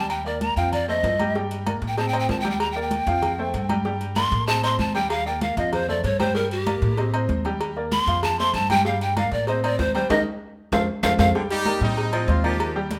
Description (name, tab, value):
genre	latin, salsa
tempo	192 BPM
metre	4/4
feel	straight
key	G minor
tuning	A4 = 440 Hz
part	breathy reedy pan flute	melody	0.0-11.3 s	G4 to C6	-26 LUFS	equal	none
part	bright upright piano	accompaniment	0.0-13.0 s	F3 to G5	-31 LUFS	equal	none
part	upright bass	bass	0.0-13.0 s	Eb2 to A2	-29 LUFS	equal	none
part	agogo bells and timbales	percussion	0.1-13.0 s	none	-35 LUFS	equal	none
part	congas	percussion	0.1-13.0 s	none	-32 LUFS	equal	none
part	cowbell	percussion	1.4-13.0 s	none	-36 LUFS	equal	none
part	warm baritone saxophone	second line	11.4-12.8 s	D3 to G3	-32 LUFS	equal	none
part	brilliant horn section	melody	11.5-12.7 s	C4 to G4	-29 LUFS	equal	none
room	moderate large studio reverb, RT60 1.1 s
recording	none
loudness	-23 LUFS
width	mono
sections	0.0-11.4 A section; 11.4-13.0 B section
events	pan flute solo 0.0-11.4; band accent 10.1-11.4; drum fill 10.4-11.4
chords	0.1 Ebmaj7; 0.7 F7; 1.4 Gm; 2.0 Am7b5; 2.6 Ebmaj7; 3.2 F; 3.9 Gm; 4.5 Am7b5; 5.1 Ebmaj7; 5.7 F; 6.4 Gm; 7.0 Am7b5; 7.6 Ebmaj7; 8.2 F; 8.9 Gm; 9.5 Am7b5; 10.1 Eb; 10.7 F; 11.4 Gm; 12.0 Ebmaj7